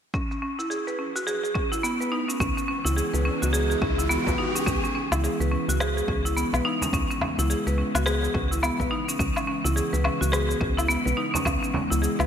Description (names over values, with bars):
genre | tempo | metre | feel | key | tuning
organic downtempo | 106 BPM | 4/4 | swing 60% on 16ths | C# minor | A4 = 440 Hz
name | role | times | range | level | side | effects
buzzing marimba with hard mallets | arpeggios | 0.1-12.3 s | B3 to B4 | -26 LUFS | equal | low-pass filter, digital delay
electronic kick drum | drums | 0.1-11.6 s | none | -30 LUFS | equal | overdrive
electronic shaker, woodblock and rim click | drums | 0.1-12.3 s | none | -31 LUFS | left 1 dB | overdrive, low-pass filter on perc, low-pass filter on snare
riser | sound effects | 2.0-4.7 s | none | -34 LUFS | equal | none
warbly tape-like pad | sustained chords | 2.7-12.3 s | C#3 to B3 | -32 LUFS | left 2 dB | chorus, built-in reverb, sidechain pumping
woody FM bass | bass | 2.4-12.3 s | B1 to C#2 | -26 LUFS | equal | sidechain pumping
frame drum | percussion | 4.3-7.3, 11.3-11.9 s | none | -34 LUFS | right 2 dB | none
room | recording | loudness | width
moderate lush hall reverb, RT60 1.9 s, digital ambience | bright 1980s-style digital production | -23 LUFS | side -8 dB against mid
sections
0.1-4.7 A section; 4.7-12.3 B section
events
filter sweep on marimba 0.1-4.7; riser 2.0-4.7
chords
0.1 C#m7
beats
| 0.14 0.71 1.27 1.84 | 2.40 2.97 3.54 4.10 | 4.67 5.23 5.80 6.37 | 6.93 7.50 8.06 8.63 | 9.20 9.76 10.33 10.89 | 11.46 12.03